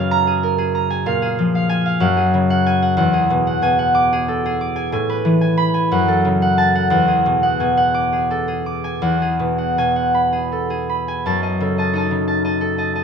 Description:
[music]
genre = classical, solo harp piece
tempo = 53-64 BPM (dotted quarters)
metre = 6/8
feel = rubato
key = unclear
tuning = A4 = 440 Hz
[part]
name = concert harp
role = solo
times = 0.0-13.0 s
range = E2 to D6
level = -15 LUFS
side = equal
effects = none
[sound]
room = moderate stone room reverb, RT60 1.2 s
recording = close, detailed microphones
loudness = -15 LUFS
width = side -6 dB against mid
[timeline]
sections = 0.0-11.3 A section; 11.3-13.0 B section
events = none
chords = 0.0 F#maj9; 1.1 A#5; 2.0 F#add9; 3.0 E9; 4.9 Asus2; 5.9 F#m; 6.9 E9; 9.0 Eadd9; 11.3 F#m6

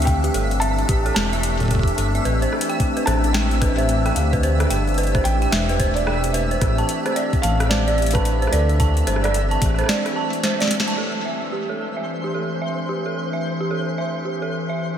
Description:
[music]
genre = IDM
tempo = 110 BPM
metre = 4/4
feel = swing 62% on 16ths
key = A minor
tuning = A4 = 442 Hz
[part]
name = felt-muted upright piano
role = melody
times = 0.0-10.7 s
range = A4 to A5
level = -28 LUFS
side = right 1 dB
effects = analog delay
[part]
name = icy glass pad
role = sustained chords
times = 0.0-15.0 s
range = E3 to G4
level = -26 LUFS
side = left 1 dB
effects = chorus, built-in reverb
[part]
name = dark detuned synth bell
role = arpeggios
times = 0.0-14.8 s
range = G4 to A5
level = -26 LUFS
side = right 4 dB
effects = chorus, low-pass filter, analog delay
[part]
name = dark detuned saw bass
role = bass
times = 0.0-9.8 s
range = E1 to D2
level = -21 LUFS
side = equal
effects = none
[part]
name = booming analog drum machine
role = drums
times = 0.0-11.0 s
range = hi-hat, rim click, snare drum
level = -26 LUFS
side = left 1 dB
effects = low-pass filter on hats, low-pass filter on cymbals, low-pass filter on snare, low-pass filter on room, ping-pong delay
[part]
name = twinkling granular texture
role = texture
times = 0.0-15.0 s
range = C5 to E5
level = -32 LUFS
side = equal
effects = built-in reverb, analog chorus
[part]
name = electronic kick drum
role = drums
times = 0.1-9.8 s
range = none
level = -21 LUFS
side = equal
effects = none
[sound]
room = moderate cathedral reverb, RT60 5.5 s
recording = dreamy mix soaked in reverb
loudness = -18 LUFS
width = side -9 dB against mid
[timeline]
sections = 0.0-11.0 A section; 11.0-15.0 B section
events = drum fill 10.4-11.0; band accent 10.8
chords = 0.0 Am7; 2.3 C/A; 6.6 D5/A; 11.0 Am7

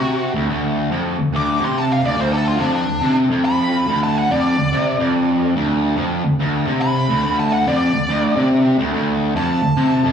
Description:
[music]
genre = rock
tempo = 143 BPM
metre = 4/4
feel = swing 65% on 8ths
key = unclear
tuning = A4 = 440 Hz
[part]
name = smooth overdriven lead guitar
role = melody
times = 0.0-10.1 s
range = D4 to D6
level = -22 LUFS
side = equal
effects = wah, slapback echo, tape echo
[part]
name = distorted electric guitar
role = riff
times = 0.0-10.1 s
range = D2 to C3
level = -17 LUFS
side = equal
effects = distortion, slapback echo
[sound]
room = light reverb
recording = live gig heard through the venue's PA, club reverb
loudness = -16 LUFS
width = side -8 dB against mid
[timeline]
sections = 0.0-10.1 A section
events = lead electric guitar solo 0.0-10.1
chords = none

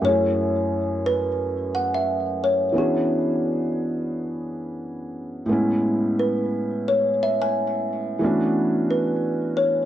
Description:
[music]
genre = hip hop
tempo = 88 BPM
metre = 4/4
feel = swing 57% on 16ths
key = A major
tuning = A4 = 440 Hz
[part]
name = kalimba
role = melody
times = 0.0-9.9 s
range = G#4 to G#5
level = -23 LUFS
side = equal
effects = low-pass filter, plate reverb, tape echo
[part]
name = felt-muted upright piano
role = accompaniment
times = 0.0-9.9 s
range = F#2 to G#4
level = -23 LUFS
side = equal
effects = cassette tape, low-pass filter, plate reverb
[sound]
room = wet studio reverb, RT60 0.6 s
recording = dark, warm production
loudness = -20 LUFS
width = side -11 dB against mid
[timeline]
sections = 0.0-5.5 A section; 5.5-9.9 B section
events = none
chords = 0.0 F#m9; 2.8 E13; 5.5 Amaj9; 8.2 E13sus4

